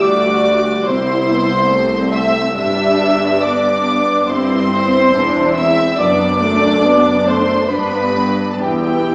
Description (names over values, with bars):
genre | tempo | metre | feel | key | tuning
classical, slow romantic movement for string orchestra | 70 BPM | 4/4 | rubato | G major | A4 = 442 Hz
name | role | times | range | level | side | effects
warm symphonic violin section | melody | 0.0-9.1 s | G5 to E6 | -22 LUFS | equal | none
warm symphonic violin section | second line | 0.0-9.1 s | G4 to E5 | -20 LUFS | equal | none
dark symphonic viola section | accompaniment | 0.0-9.1 s | G3 to F#4 | -20 LUFS | equal | none
dark symphonic double bass section | bass | 0.0-9.1 s | E1 to D2 | -28 LUFS | equal | none
rich symphonic cello section | bass | 0.0-9.1 s | C2 to G2 | -24 LUFS | equal | none
room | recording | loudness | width
wet scoring stage reverb, RT60 1.7 s | heard from further back in the room, small speaker sound | -15 LUFS | mono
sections
0.0-9.1 A section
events
none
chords
0.0 N.C.; 0.9 C; 2.6 G; 4.3 C/G; 6.0 D/F#; 7.7 G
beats
0.03 0.87 1.72 | 2.59 3.44 4.29 5.15 | 6.00 6.86 7.71 8.62